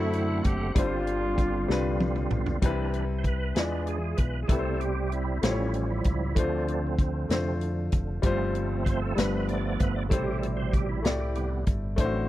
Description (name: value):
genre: slow gospel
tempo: 64 BPM (dotted quarters)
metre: 6/8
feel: straight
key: unclear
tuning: A4 = 440 Hz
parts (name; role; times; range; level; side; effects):
- warm horn section; melody; 0.0-2.0 s; A3 to G4; -31 LUFS; equal; none
- warm baby grand piano; accompaniment; 0.0-12.3 s; G2 to D5; -31 LUFS; left 3 dB; none
- bright tonewheel organ; sustained chords; 0.0-12.3 s; B2 to F#5; -32 LUFS; right 4 dB; fast rotary speaker, chorus vibrato
- fingered electric bass; bass; 0.0-12.3 s; F1 to F#2; -30 LUFS; equal; none
- warm soul drum kit; drums; 0.1-12.1 s; hi-hat, kick drum, snare drum, toms; -26 LUFS; equal; none
room: small room reverb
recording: none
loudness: -25 LUFS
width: side -15 dB against mid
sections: 0.0-2.6 A section; 2.6-12.3 B section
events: drum fill 1.7-2.6; tonewheel organ solo 2.6-12.3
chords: 0.0 D7; 0.8 G7sus4; 2.6 Cmaj7; 3.6 E7b9; 4.5 Am7/C; 5.4 A7b13; 6.4 Dm7; 8.2 G7sus4; 9.2 G7; 10.1 Am7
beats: | 0.76 1.69 | 2.62 3.56 | 4.49 5.43 | 6.36 7.30 | 8.24 9.18 | 10.11 11.05 | 11.99